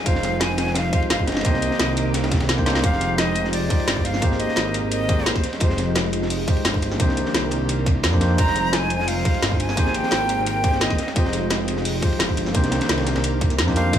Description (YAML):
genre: liquid drum and bass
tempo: 173 BPM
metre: 4/4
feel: straight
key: F dorian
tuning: A4 = 440 Hz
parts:
  - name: breathy bright jazz flute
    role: melody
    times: 0.0-5.9, 8.4-11.5, 13.8-14.0 s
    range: C5 to Bb5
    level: -26 LUFS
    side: equal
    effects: tape echo
  - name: tine electric piano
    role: accompaniment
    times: 0.0-14.0 s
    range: G3 to C5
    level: -26 LUFS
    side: equal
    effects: vintage 12-bit sampler grit, digital delay
  - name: lush unison pad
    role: sustained chords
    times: 0.0-14.0 s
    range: Eb3 to D6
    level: -29 LUFS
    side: equal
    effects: chorus, vintage 12-bit sampler grit, sidechain pumping
  - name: dark detuned saw bass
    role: bass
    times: 0.1-14.0 s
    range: F1 to F2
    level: -25 LUFS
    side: equal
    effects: none
  - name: crunchy breakbeat drum kit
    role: drums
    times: 0.1-14.0 s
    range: hi-hat, ride cymbal, snare drum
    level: -29 LUFS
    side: equal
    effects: high-pass filter on cymbals, high-pass filter on hats, high-pass filter on snare, high-pass filter on room
  - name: drum and bass drum kit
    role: drums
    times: 0.1-14.0 s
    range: hi-hat, snare drum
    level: -25 LUFS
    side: equal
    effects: none
  - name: electronic kick drum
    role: drums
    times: 0.1-14.0 s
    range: none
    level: -21 LUFS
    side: equal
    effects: none
room: light reverb, small room ambience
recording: none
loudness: -18 LUFS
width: side -10 dB against mid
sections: 0.0-2.8 A section; 2.8-14.0 A section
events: drop 0.0-2.8, 2.8-14.0; drum fill 2.7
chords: 0.0 Fm7; 1.4 Cm9; 2.8 Fm7; 4.2 Abmaj9; 5.4 Fm7; 7.0 Cm9; 8.4 Fm7; 9.8 Abmaj9; 11.0 Fm7; 12.5 Cm9